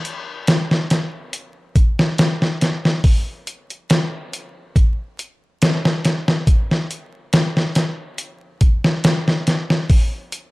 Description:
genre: trip hop.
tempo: 70 BPM.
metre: 4/4.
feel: swing 53% on 16ths.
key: none.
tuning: none.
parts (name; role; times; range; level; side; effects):
dusty soul sampler-style drum kit; drums; 0.1-10.5 s; hi-hat, kick drum, snare drum; -16 LUFS; equal; none.
room: digital ambience.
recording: vinyl crackle, lossy compression artefacts.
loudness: -16 LUFS.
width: side -22 dB against mid.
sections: 0.0-10.5 A section.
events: none.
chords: none.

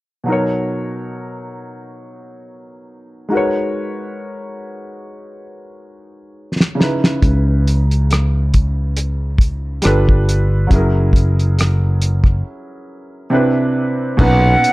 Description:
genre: R&B, neo-soul.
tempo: 69 BPM.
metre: 4/4.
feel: swing 53% on 16ths.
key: B major.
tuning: A4 = 440 Hz.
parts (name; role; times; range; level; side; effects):
clear concert grand piano; accompaniment; 0.2-14.7 s; A#2 to C#5; -20 LUFS; equal; none.
cloth-damped thuddy drum kit; drums; 6.6-14.7 s; crash cymbal, hi-hat, kick drum, rim click, snare drum; -15 LUFS; equal; none.
fretless electric bass; bass; 7.2-14.6 s; F#1 to C#2; -15 LUFS; equal; none.
silver concert flute; melody; 14.2-14.7 s; F#5; -14 LUFS; right 1 dB; none.
room: light reverb.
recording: dark, warm production.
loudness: -13 LUFS.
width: side -20 dB against mid.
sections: 0.3-14.2 A section.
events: drum fill 5.5-7.2; break 12.4-14.2.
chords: 0.3 Bmaj9; 3.3 G#m11; 6.8 C#m9; 9.8 G9; 10.7 F#9; 13.3 Cmaj9; 14.2 Bmaj9.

